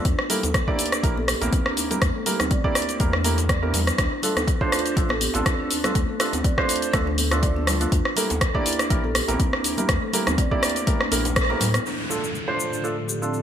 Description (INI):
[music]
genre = afro house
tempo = 122 BPM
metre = 4/4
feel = swing 55% on 16ths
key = D minor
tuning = A4 = 440 Hz
[part]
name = felt-muted upright piano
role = stabs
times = 0.0-13.4 s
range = A3 to D5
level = -28 LUFS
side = right 3 dB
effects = sidechain pumping, low-pass filter, ping-pong delay
[part]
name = marimba with soft mallets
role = arpeggios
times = 0.1-13.3 s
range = A3 to D5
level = -30 LUFS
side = equal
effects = sidechain pumping, low-pass filter, ping-pong delay
[part]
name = warm sub bass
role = bass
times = 0.1-11.8 s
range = A1 to A2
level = -26 LUFS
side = equal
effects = tube saturation, sidechain pumping
[part]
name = deep house drum kit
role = drums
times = 0.1-13.4 s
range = hi-hat, rim click, shaker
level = -24 LUFS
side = equal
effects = gated reverb
[part]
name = electronic kick drum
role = drums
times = 0.1-11.5 s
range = none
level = -23 LUFS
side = equal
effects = none
[part]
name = congas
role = percussion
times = 0.3-11.8 s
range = none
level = -33 LUFS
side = left 2 dB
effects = none
[part]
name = djembe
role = percussion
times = 0.4-11.7 s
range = none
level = -34 LUFS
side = right 1 dB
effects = none
[part]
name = dark analog pad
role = sustained chords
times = 11.9-13.4 s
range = A3 to F5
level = -32 LUFS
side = left 1 dB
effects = lush chorus, sidechain pumping
[part]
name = downlifter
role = sound effects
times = 11.9-13.4 s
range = none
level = -32 LUFS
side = equal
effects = none
[sound]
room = light reverb, small room ambience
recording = bright 1980s-style digital production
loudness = -20 LUFS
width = side -9 dB against mid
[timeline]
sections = 0.0-11.9 A section; 11.9-13.4 B section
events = band accent 11.4; filter sweep on marimba 11.9-13.4; filter sweep on analog synth pad 11.9-13.4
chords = 0.1 Edim; 4.0 Dm; 7.9 Edim; 11.9 Dm